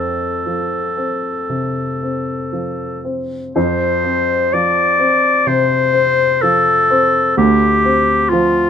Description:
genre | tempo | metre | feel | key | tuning
classical, impressionist duo for clarinet and grand piano | 57-65 BPM | 4/4 | rubato | F major | A4 = 440 Hz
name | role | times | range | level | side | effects
clear clarinet | melody | 0.0-8.7 s | F4 to D5 | -15 LUFS | left 2 dB | none
dark grand piano | accompaniment | 0.0-8.7 s | D2 to C4 | -18 LUFS | right 1 dB | none
room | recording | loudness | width
light reverb | minimal, uncompressed stereo recording | -13 LUFS | side -8 dB against mid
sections
0.0-3.6 A section; 3.6-8.7 A section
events
none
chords
0.0 F; 7.4 Dm7

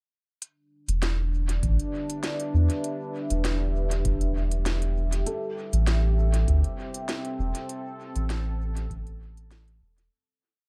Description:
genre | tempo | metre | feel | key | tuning
ambient dub | 99 BPM | 4/4 | swing 53% on 16ths | E minor | A4 = 440 Hz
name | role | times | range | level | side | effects
deep dark ambient pad | sustained chords | 1.2-10.1 s | C4 to E5 | -36 LUFS | equal | chorus, built-in reverb
organic electronic drum kit | drums | 0.4-10.1 s | hi-hat, snare drum | -37 LUFS | equal | dub echo
soft dub sub bass | bass | 0.9-10.1 s | E1 to E2 | -26 LUFS | equal | none
electronic kick drum | drums | 1.6-9.0 s | none | -34 LUFS | equal | none
felt-muted upright piano | arpeggios | 5.3-10.1 s | A4 | -41 LUFS | equal | dub echo
room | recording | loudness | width
digital ambience | echo-heavy mix | -27 LUFS | mono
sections
0.4-10.1 groove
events
fade-out 6.9-10.1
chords
0.4 Em7; 5.3 Am7

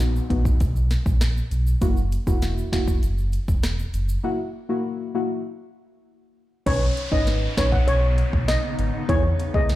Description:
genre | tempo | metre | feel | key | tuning
dancehall | 99 BPM | 4/4 | straight | unclear | A4 = 438 Hz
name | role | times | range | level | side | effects
deep mellow chord stab | accompaniment | 0.0-9.8 s | A#3 to B4 | -27 LUFS | left 2 dB | chorus
sub bass with octave | bass | 0.0-9.8 s | E1 to E2 | -22 LUFS | equal | none
afro-pop drum kit | drums | 0.0-9.8 s | crash cymbal, hi-hat, kick drum, rim click, snare drum | -23 LUFS | equal | none
egg shaker | percussion | 0.0-4.2 s | none | -46 LUFS | right 2 dB | none
downlifter | sound effects | 0.0-1.8, 6.7-9.8 s | none | -37 LUFS | equal | none
steel pan | melody | 6.7-9.7 s | C#5 to F#5 | -26 LUFS | left 1 dB | tape echo
granular cloud pad | sustained chords | 7.9-9.8 s | B2 to E4 | -32 LUFS | equal | built-in reverb, sidechain pumping
room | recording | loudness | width
digital ambience | played on a big sound system in a bare room, stone room reverb | -20 LUFS | side -15 dB against mid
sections
0.0-6.7 A section; 6.7-9.8 B section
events
break 4.2-6.7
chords
0.0 B; 1.8 F#7; 6.7 Badd9; 9.1 E

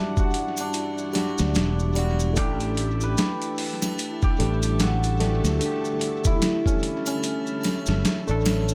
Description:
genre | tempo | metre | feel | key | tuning
trip hop | 74 BPM | 4/4 | swing 58% on 16ths | unclear | A4 = 440 Hz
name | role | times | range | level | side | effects
cimbalom | melody | 0.0-8.7 s | C#4 to B4 | -33 LUFS | equal | vintage 12-bit sampler grit, tape echo
barky tine electric piano | accompaniment | 0.0-8.7 s | D3 to A4 | -31 LUFS | equal | harmonic tremolo, tape echo
string machine, cellos | sustained chords | 0.0-8.7 s | G3 to A5 | -39 LUFS | equal | ensemble chorus
dusty soul sampler-style drum kit | drums | 0.2-8.7 s | hi-hat, kick drum, snare drum | -28 LUFS | equal | overdrive, dub echo
maracas and triangle | percussion | 0.2-8.7 s | none | -39 LUFS | equal | dub echo
fingered electric bass | bass | 1.4-8.7 s | E1 to D2 | -26 LUFS | equal | none
room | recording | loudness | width
digital ambience | echo-heavy mix | -24 LUFS | mono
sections
0.0-8.7 A section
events
none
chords
0.0 Em9; 2.4 A7sus4

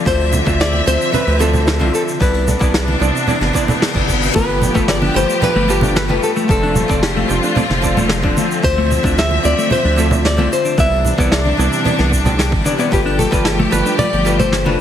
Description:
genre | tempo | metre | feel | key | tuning
sunset chillout | 112 BPM | 4/4 | straight | C major | A4 = 440 Hz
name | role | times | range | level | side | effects
archtop guitar, miked and amplified | accompaniment | 0.0-14.8 s | C3 to G5 | -21 LUFS | moving between left 5 dB and right 6 dB | auto-pan, tape echo
warm symphonic string section | sustained chords | 0.0-14.8 s | C3 to E5 | -20 LUFS | left 1 dB | none
flamenco guitar | melody | 0.1-14.8 s | G4 to E5 | -20 LUFS | left 1 dB | digital delay
round analog bass | bass | 0.1-14.8 s | D1 to D2 | -18 LUFS | equal | none
electronic kick drum | drums | 0.1-13.4 s | none | -19 LUFS | equal | overdrive
vintage brush drum kit | drums | 0.1-14.8 s | hi-hat, shaker, snare drum | -23 LUFS | equal | none
congas | percussion | 0.3-14.8 s | none | -22 LUFS | right 2 dB | none
reverse cymbal | sound effects | 3.7-4.3 s | none | -23 LUFS | left 6 dB | none
clean electric guitar | arpeggios | 4.3-14.8 s | A3 to G4 | -23 LUFS | left 3 dB | tape echo
room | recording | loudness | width
moderate scoring stage reverb, RT60 1.7 s, studio reverb | heavily compressed radio sound, multiband compression | -13 LUFS | side -10 dB against mid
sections
0.0-14.8 A section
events
reverse cymbal 3.7-4.3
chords
0.1 Dm9; 2.2 Cmaj9; 4.3 G9; 6.5 F6; 8.6 Dm9; 10.8 Cmaj9; 12.9 G9

